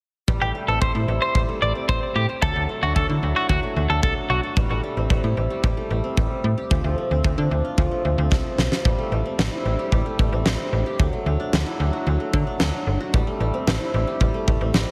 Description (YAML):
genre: synth-pop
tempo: 112 BPM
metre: 4/4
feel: straight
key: A minor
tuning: A4 = 440 Hz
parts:
  - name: qanun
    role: arpeggios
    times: 0.3-14.9 s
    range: F3 to G4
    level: -30 LUFS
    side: equal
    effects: delay
  - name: slap-like FM bass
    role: bass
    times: 0.3-14.9 s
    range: G1 to D3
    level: -25 LUFS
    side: equal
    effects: none
  - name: huge arena drum kit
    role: drums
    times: 0.3-14.9 s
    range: kick drum, snare drum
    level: -27 LUFS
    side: equal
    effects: none
  - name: twelve-string electric guitar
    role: second line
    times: 0.4-4.4 s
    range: F#4 to D5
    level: -26 LUFS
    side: equal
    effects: delay
room: light reverb, small room reverb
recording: heavily compressed radio sound, lossy compression artefacts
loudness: -22 LUFS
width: mono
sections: 0.3-8.9 A section; 8.9-14.9 B section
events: drum fill 8.3-8.9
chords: 0.3 Am7; 2.4 Dadd9; 4.6 Am7; 6.7 Dm7; 8.9 Am7; 11.0 Dadd9; 13.1 Am7